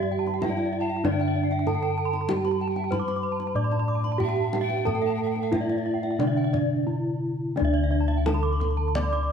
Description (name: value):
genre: Balinese gamelan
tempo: 86-96 BPM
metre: 4/4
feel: straight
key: D slendro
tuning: A4 = 439 Hz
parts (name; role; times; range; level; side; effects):
- gamelan-type bronze metallophone; melody; 0.0-9.3 s; D4 to D5; -28 LUFS; right 4 dB; none
- polished pan flute; second line; 0.0-7.2 s; D5 to A5+28c; -36 LUFS; left 5 dB; none
- gamelan-type bronze metallophone; accompaniment; 0.0-7.6 s; D3 to D4; -33 LUFS; left 2 dB; none
- gamelan-type bronze metallophone; arpeggios; 0.0-9.3 s; D5 to D6; -34 LUFS; left 6 dB; none
- gamelan-type bronze metallophone; arpeggios; 0.0-9.2 s; D5 to D6; -33 LUFS; right 6 dB; none
- gamelan-type bossed gongs; bass; 0.0-9.3 s; D2 to A4+25c; -28 LUFS; left 2 dB; none
- kendang; percussion; 0.3-9.2 s; none; -35 LUFS; left 3 dB; none
room: moderate recital hall reverb, RT60 1.6 s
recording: none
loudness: -23 LUFS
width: side -7 dB against mid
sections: 0.0-7.6 A section; 7.6-9.3 B section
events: none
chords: none